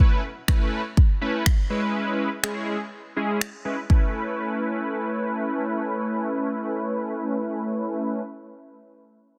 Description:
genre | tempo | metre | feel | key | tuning
dance-pop | 123 BPM | 4/4 | straight | A major | A4 = 440 Hz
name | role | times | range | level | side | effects
big bright polysynth | accompaniment | 0.0-8.2 s | G#3 to B4 | -28 LUFS | equal | analog chorus, sidechain pumping, low-pass filter
house drum kit | drums | 0.5-4.0 s | finger snaps, kick drum | -21 LUFS | equal | soft clipping on snare
room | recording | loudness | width
light reverb | dense, heavily limited modern master | -25 LUFS | mono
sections
0.0-3.9 A section; 3.9-7.8 B section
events
kick muted 2.9-3.9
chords
0.0 Aadd9; 1.7 C#m7; 3.9 Aadd9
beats
| 0.00 0.48 0.97 1.46 | 1.95 2.44 2.92 3.41 | 3.90 4.39 4.87 5.36 | 5.85 6.34 6.83 7.31

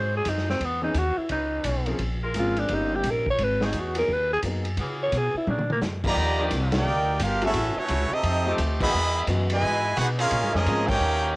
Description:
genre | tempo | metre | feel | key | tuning
jazz, big band swing | 173 BPM | 4/4 | swing 64% on 8ths | unclear | A4 = 440 Hz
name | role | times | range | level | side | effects
growling alto saxophone | melody | 0.0-5.8 s | A#3 to C#5 | -25 LUFS | equal | cassette tape
clear saxophone section | sustained chords | 0.0-11.0 s | Eb3 to B4 | -34 LUFS | equal | cassette tape
upright bass | bass | 0.0-11.3 s | G1 to C#3 | -27 LUFS | equal | transformer saturation
vintage drum kit | drums | 0.2-10.9 s | crash cymbal, hi-hat, kick drum, ride cymbal, snare drum, toms | -31 LUFS | equal | cassette tape
warm baby grand piano | accompaniment | 0.8-10.9 s | D#3 to D#5 | -31 LUFS | left 2 dB | cassette tape
brilliant trumpet section | melody | 6.1-11.4 s | A3 to Cb6 | -25 LUFS | right 1 dB | cassette tape, plate reverb
muted trombone section | second line | 6.1-11.4 s | B2 to G4 | -31 LUFS | right 2 dB | cassette tape, plate reverb
room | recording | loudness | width
light reverb | home recording on cassette | -22 LUFS | side -23 dB against mid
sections
0.0-6.2 A section; 6.2-11.4 B section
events
alto saxophone solo 0.0-6.2; drum fill 5.5-5.8; band accent 6.7, 8.8, 10.8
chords
0.0 G#7; 0.6 C#m9; 2.0 A#m7; 2.7 D#7; 3.4 G#m7; 4.8 C#m7; 5.5 A#7b13; 6.2 Ebmaj7; 7.6 Gbm7; 8.2 F9; 8.9 Emaj7; 10.3 Bbm7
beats
0.26 | 0.61 0.96 1.31 1.65 | 2.00 2.35 2.70 3.04 | 3.39 3.74 4.08 4.43 | 4.78 5.13 5.47 5.82 | 6.17 6.51 6.86 7.21 | 7.55 7.90 8.24 8.59 | 8.94 9.29 9.63 9.98 | 10.32 10.67 11.02

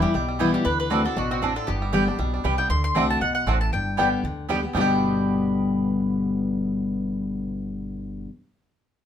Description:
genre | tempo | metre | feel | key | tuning
bluegrass | 235 BPM | 4/4 | swing 55% on 8ths | G major | A4 = 441 Hz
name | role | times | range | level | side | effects
bluegrass banjo | melody | 0.0-8.3 s | D3 to G4 | -31 LUFS | right 3 dB | none
mandolin | melody | 0.0-4.5 s | D4 to C6 | -28 LUFS | equal | none
picked steel-string acoustic guitar | accompaniment | 0.0-8.3 s | E2 to G4 | -24 LUFS | left 2 dB | none
upright bass | bass | 0.0-8.2 s | G1 to D2 | -30 LUFS | right 1 dB | none
mandolin | stabs | 0.4-8.3 s | B3 to A5 | -27 LUFS | right 2 dB | none
room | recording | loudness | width
moderate studio reverb, RT60 0.7 s | minimal, uncompressed stereo recording | -21 LUFS | side -9 dB against mid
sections
0.0-2.7 A section; 2.7-4.7 B section; 4.7-6.8 C section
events
none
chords
0.0 Em; 0.7 D7; 1.7 G; 2.7 D7; 3.7 G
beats
0.14 0.40 | 0.66 0.91 1.17 1.42 | 1.68 1.93 2.19 2.44 | 2.70 2.96 3.21 3.47 | 3.72 3.98 4.23 4.49 | 4.74 5.00 5.25 5.51 | 5.76 6.02 6.28 6.53

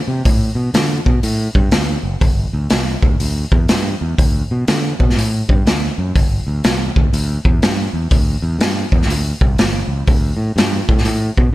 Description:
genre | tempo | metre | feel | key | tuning
blues rock power trio and southern rock | 122 BPM | 4/4 | swing 65% on 8ths | D mixolydian | A4 = 439 Hz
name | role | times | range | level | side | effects
growling fingered electric bass | bass | 0.1-11.5 s | F#1 to D3 | -18 LUFS | equal | overdrive
raw garage drum kit | drums | 0.3-11.5 s | hi-hat, kick drum, snare drum | -15 LUFS | equal | none
room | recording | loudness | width
light reverb | none | -14 LUFS | side -16 dB against mid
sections
0.0-11.5 A section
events
none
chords
none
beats
| 0.25 0.74 1.23 1.72 | 2.21 2.70 3.19 3.69 | 4.18 4.67 5.16 5.65 | 6.15 6.64 7.13 7.62 | 8.11 8.60 9.09 9.59 | 10.07 10.56 11.05

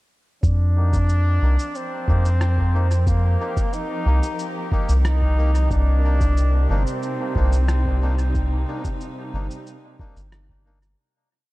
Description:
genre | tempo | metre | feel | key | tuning
ambient dub | 91 BPM | 4/4 | straight | C minor | A4 = 439 Hz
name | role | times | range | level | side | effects
bright trombone | melody | 0.4-10.3 s | Bb3 to Eb4 | -29 LUFS | equal | dub echo
warm studio string section | sustained chords | 0.4-11.0 s | C3 to Bb4 | -33 LUFS | right 2 dB | none
soft dub sub bass | bass | 0.4-10.9 s | G1 to F2 | -18 LUFS | equal | none
electronic cabasa and rim click | drums | 0.4-10.9 s | none | -37 LUFS | equal | studio reverb, dub echo
electronic kick drum | drums | 0.4-10.6 s | none | -24 LUFS | equal | studio reverb
melodica | stabs | 0.8-10.8 s | Bb3 to G4 | -34 LUFS | left 2 dB | low-pass filter, dub echo
room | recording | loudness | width
little or no reverb | none | -18 LUFS | side -19 dB against mid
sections
0.4-11.0 groove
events
fade-in on string section 0.4-11.0; filter sweep on melodica 0.4-11.0; fade-out 7.5-11.0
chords
0.4 F9sus4; 5.7 Cm9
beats
| 0.43 1.09 1.75 2.41 | 3.07 3.73 4.39 5.05 | 5.71 6.37 7.03 7.69 | 8.35 9.01 9.66 10.32

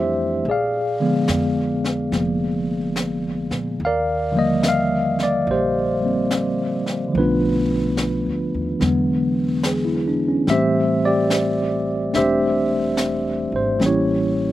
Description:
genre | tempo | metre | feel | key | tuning
jazz ballad | 72 BPM | 4/4 | swing 66% on 8ths | unclear | A4 = 440 Hz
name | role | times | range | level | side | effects
bright tine electric piano | accompaniment | 0.0-14.5 s | D3 to F5 | -18 LUFS | equal | medium stereo tremolo, slapback echo
upright bass | bass | 0.0-14.5 s | E1 to Bb2 | -29 LUFS | equal | none
jazz brush drum kit | drums | 0.4-14.5 s | brushed snare drum, hi-hat, snare drum | -28 LUFS | left 1 dB | slapback echo
room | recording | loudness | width
little or no reverb | recorded outdoors, with no room sound | -18 LUFS | side -14 dB against mid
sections
0.0-14.5 A section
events
none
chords
0.4 Bb7b9; 3.8 Ebmaj7; 7.1 Bm7b5; 8.8 E7; 10.5 Am7; 13.8 A7b9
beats
| 0.45 1.28 2.12 2.96 | 3.79 4.63 5.46 6.30 | 7.13 7.97 8.80 9.63 | 10.47 11.30 12.13 12.97 | 13.80

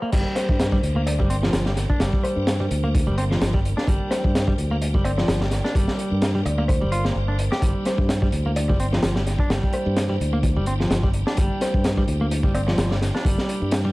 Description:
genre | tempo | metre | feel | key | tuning
breakbeat, breaks | 128 BPM | 4/4 | swing 55% on 16ths | G dorian | A4 = 438 Hz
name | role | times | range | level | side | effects
clean electric guitar | riff | 0.0-13.9 s | F3 to G4 | -27 LUFS | equal | spring reverb, tape echo
tonewheel organ | sustained chords | 0.1-13.9 s | G3 to Bb4 | -35 LUFS | right 1 dB | overdrive, chorus vibrato, fast rotary speaker, sidechain pumping
modern bright fingered electric bass | bass | 0.1-13.9 s | G1 to G2 | -23 LUFS | equal | high-pass filter
crunchy breakbeat drum kit | drums | 0.1-13.8 s | crash cymbal, hi-hat, kick drum, snare drum | -23 LUFS | equal | none
kalimba | melody | 0.4-12.7 s | C5 to D5 | -31 LUFS | left 1 dB | telephone sound, tape echo
room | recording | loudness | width
studio ambience | vinyl crackle | -19 LUFS | side -20 dB against mid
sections
0.1-13.9 A section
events
drop 0.1-13.9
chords
0.1 Gm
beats
| 0.13 0.59 1.06 1.53 | 2.00 2.47 2.94 3.41 | 3.88 4.34 4.81 5.28 | 5.75 6.22 6.69 7.16 | 7.63 8.09 8.56 9.03 | 9.50 9.97 10.44 10.91 | 11.38 11.84 12.31 12.78 | 13.25 13.72

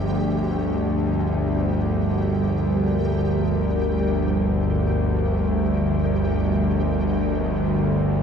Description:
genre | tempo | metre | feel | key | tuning
dark ambient drone | free time | none | none | G minor | A4 = 440 Hz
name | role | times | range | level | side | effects
deep dark ambient pad | sustained chords | 1.5-8.2 s | G3 to G5 | -26 LUFS | right 2 dB | chorus, built-in reverb
quartz singing bowl | arpeggios | 0.0-6.6 s | F3 | -33 LUFS | right 2 dB | none
bowed-like drone | drone | 0.0-8.2 s | G1 to D2 | -21 LUFS | left 1 dB | built-in reverb
flickering grainy texture | texture | 0.0-8.2 s | G4 | -35 LUFS | right 1 dB | built-in reverb
room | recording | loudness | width
wet cathedral reverb, RT60 5.6 s | none | -20 LUFS | side -7 dB against mid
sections
0.0-8.2 A section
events
none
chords
0.0 Gm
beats
free time

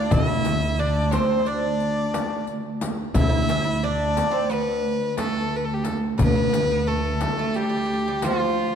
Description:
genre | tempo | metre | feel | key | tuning
Turkish makam ensemble | 177 BPM (eighths) | 9/8 | straight | D makam huseyni | A4 = 440 Hz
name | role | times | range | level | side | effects
clear violin | melody | 0.0-8.8 s | F4 to E5-32c | -26 LUFS | left 1 dB | none
Greek bouzouki | second line | 0.0-8.8 s | F3 to E4-30c | -28 LUFS | right 1 dB | none
muted chamber cello section | drone | 0.0-8.8 s | D2 | -27 LUFS | right 2 dB | none
upright bass | bass | 0.1-7.2 s | D2 | -26 LUFS | equal | none
darbuka | percussion | 0.1-8.4 s | none | -30 LUFS | left 2 dB | none
frame drum | percussion | 0.1-8.4 s | none | -29 LUFS | left 1 dB | none
riq | percussion | 0.1-8.4 s | none | -38 LUFS | left 6 dB | none
room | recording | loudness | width
wet concert hall reverb, RT60 2.3 s | dark, warm production | -20 LUFS | side -8 dB against mid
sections
0.0-8.8 A section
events
none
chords
none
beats
| 0.12 0.45 0.79 1.13 1.47 1.81 2.14 2.48 2.82 | 3.16 3.50 3.83 4.17 4.51 4.85 5.19 5.53 5.87 | 6.20 6.54 6.88 7.22 7.56 7.89 8.23 8.57

